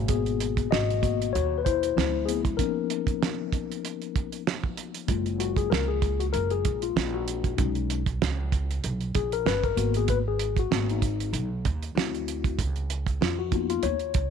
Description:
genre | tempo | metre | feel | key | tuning
hip hop, jazz-hop | 96 BPM | 4/4 | swing 57% on 16ths | F# major | A4 = 439 Hz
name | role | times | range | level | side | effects
mellow tine electric piano | accompaniment | 0.0-14.3 s | B2 to D#5 | -28 LUFS | left 13 dB | medium stereo tremolo
upright bass | bass | 0.0-14.3 s | F#1 to E#2 | -29 LUFS | right 2 dB | none
cloth-damped thuddy drum kit | drums | 0.1-14.3 s | hi-hat, kick drum, snare drum | -28 LUFS | right 5 dB | none
room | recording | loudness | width
light reverb, small room ambience | 1960s-style stereo | -24 LUFS | side -7 dB against mid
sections
0.0-5.1 A section; 5.1-14.3 B section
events
tine electric piano solo 0.0-5.1, 5.1-14.3; break 2.6-5.1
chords
0.0 G#m7; 2.0 D9; 2.6 C#13; 5.1 F#maj9; 7.6 B69; 9.8 G#m7; 12.0 D9; 12.6 C#13

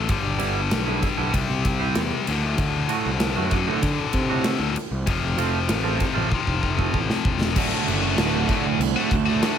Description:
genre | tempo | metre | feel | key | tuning
quiet-loud alternative rock | 96 BPM | 4/4 | straight | unclear | A4 = 440 Hz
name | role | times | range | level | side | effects
scooped high-gain guitar | riff | 0.0-9.6 s | D2 to F#4 | -25 LUFS | left 8 dB | distortion
fuzz picked electric bass | bass | 0.0-9.4 s | D1 to D3 | -26 LUFS | equal | overdrive
big rock drum kit | drums | 0.1-9.6 s | crash cymbal, kick drum, ride cymbal, snare drum | -26 LUFS | equal | none
twangy electric guitar | arpeggios | 0.2-7.1 s | A2 to C5 | -29 LUFS | right 13 dB | wide subtle chorus
distorted electric guitar | riff | 7.6-9.6 s | D2 to F#4 | -25 LUFS | right 17 dB | distortion
room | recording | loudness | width
light reverb | none | -20 LUFS | side -8 dB against mid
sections
0.0-7.6 A section; 7.6-9.6 B section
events
drum fill 6.3-7.6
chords
0.1 G6; 1.3 C; 2.3 D; 5.1 F; 7.6 D

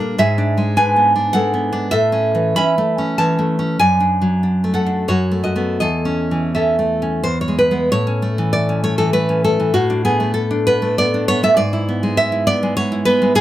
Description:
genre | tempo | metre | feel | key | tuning
romantic piece for solo classical guitar | 78-107 BPM | 3/4 | rubato | A major | A4 = 440 Hz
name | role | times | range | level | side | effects
nylon-string guitar | solo | 0.0-13.4 s | E2 to B5 | -14 LUFS | equal | none
room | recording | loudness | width
light reverb | none | -14 LUFS | side -13 dB against mid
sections
0.0-7.9 A section; 7.9-13.4 B section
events
none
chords
0.2 E7/G#; 1.9 A; 3.8 D/F#; 5.1 B7/F#; 5.8 A/E; 7.2 E; 7.9 A; 9.7 Bm7/A; 11.6 E7/G#

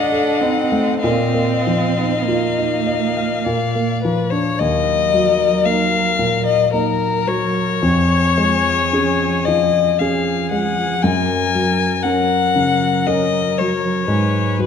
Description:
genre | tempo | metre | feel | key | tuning
classical, slow romantic movement for piano quartet | 48-61 BPM | 3/4 | rubato | Eb minor | A4 = 436 Hz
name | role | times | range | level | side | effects
rich violin | melody | 0.0-14.7 s | Bb4 to Ab5 | -19 LUFS | left 7 dB | none
warm cello | second line | 0.0-14.7 s | F3 to D4 | -24 LUFS | right 6 dB | none
warm violin | second line | 0.0-14.7 s | Ab4 to Eb5 | -26 LUFS | left 3 dB | none
warm grand piano | accompaniment | 0.0-14.7 s | Eb2 to F#5 | -19 LUFS | left 1 dB | none
room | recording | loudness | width
wet recital hall reverb, RT60 1.3 s | dark, warm production | -15 LUFS | side -7 dB against mid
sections
0.0-4.6 A section; 4.6-14.7 B section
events
none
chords
0.0 Adim7; 1.0 Bbsus4; 3.4 Bb; 4.6 Ebm; 7.8 Db/F; 11.0 Gb; 14.1 Abm7

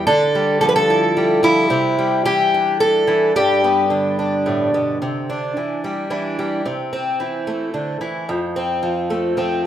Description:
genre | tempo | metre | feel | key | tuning
folk, solo fingerstyle acoustic guitar | 110 BPM | 3/4 | straight | C major | A4 = 440 Hz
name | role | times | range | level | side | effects
fingerpicked twelve-string acoustic guitar | solo | 0.0-9.7 s | F2 to B4 | -16 LUFS | equal | none
room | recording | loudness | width
moderate large studio reverb, RT60 1.1 s | band playing live in one room | -16 LUFS | side -10 dB against mid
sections
0.0-5.0 A section; 5.0-9.7 B section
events
none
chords
0.1 Dmadd9; 1.7 Cadd9; 3.4 G; 5.0 Cadd9; 6.6 Am/C; 8.3 F

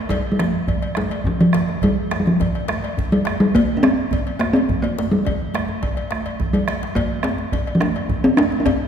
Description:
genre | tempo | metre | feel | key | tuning
west african traditional, West African drum ensemble | 140 BPM (dotted quarters) | 12/8 | straight | unclear | A4 = 435 Hz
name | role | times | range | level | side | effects
talking drum | melody | 0.0-8.9 s | F3 to D4 | -18 LUFS | equal | none
bombo | percussion | 0.1-8.8 s | none | -25 LUFS | right 2 dB | none
congas | percussion | 0.1-8.8 s | none | -29 LUFS | right 4 dB | none
cowbell | percussion | 0.1-8.8 s | none | -31 LUFS | left 4 dB | none
djembe | percussion | 0.1-8.8 s | none | -29 LUFS | left 4 dB | none
room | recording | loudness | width
wet concert hall reverb, RT60 2.2 s | recorded in a church or concert hall | -17 LUFS | side -8 dB against mid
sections
0.1-8.9 A section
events
speeding up 0.0-8.9; drum fill 6.3-7.0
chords
none

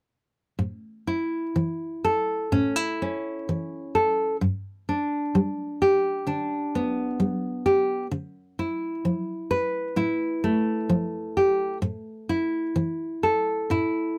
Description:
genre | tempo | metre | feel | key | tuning
folk, solo fingerstyle acoustic guitar | 64 BPM | 4/4 | rubato | A mixolydian | A4 = 440 Hz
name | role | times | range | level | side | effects
nylon-string guitar | solo | 0.6-14.2 s | G2 to B4 | -26 LUFS | equal | none
room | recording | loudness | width
little or no reverb | close, detailed microphones | -26 LUFS | mono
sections
0.6-14.2 A section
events
none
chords
0.6 A; 4.4 G; 8.1 Dmadd9; 11.8 A5

